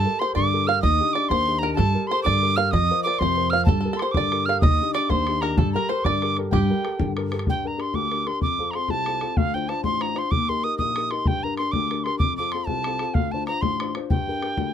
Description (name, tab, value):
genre	celtic folk, Celtic jig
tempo	126 BPM (dotted quarters)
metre	6/8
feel	straight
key	G minor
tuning	A4 = 440 Hz
part	mellow tin whistle	melody	0.0-14.7 s	F5 to F6	-24 LUFS	right 1 dB	none
part	bluegrass banjo	second line	0.0-7.1 s	G4 to F5	-28 LUFS	right 3 dB	none
part	dark upright piano	accompaniment	0.0-14.7 s	A1 to C5	-27 LUFS	left 5 dB	none
part	upright bass	bass	0.0-7.5 s	Eb2 to G2	-23 LUFS	right 1 dB	none
part	bodhran	percussion	3.7-14.7 s	none	-25 LUFS	left 1 dB	none
room	little or no reverb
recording	close, detailed microphones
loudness	-20 LUFS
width	side -9 dB against mid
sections	0.0-7.5 A section; 7.5-14.7 B section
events	none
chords	0.0 Gmadd9; 0.8 Ebmaj7; 1.8 Gmadd9; 2.7 Fsus4; 3.7 Gmadd9; 4.6 Ebmaj7; 5.6 Gmadd9; 7.5 Gm; 8.4 F; 9.4 Dm7; 10.3 Eb; 11.3 Gm; 12.2 F; 13.2 Dm7; 14.1 Gm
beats	0.35 | 0.83 1.30 | 1.78 2.25 | 2.73 3.20 | 3.68 4.15 | 4.63 5.10 | 5.58 6.05 | 6.52 7.00 | 7.47 7.95 | 8.42 8.90 | 9.37 9.85 | 10.32 10.79 | 11.27 11.74 | 12.21 12.69 | 13.16 13.63 | 14.10 14.57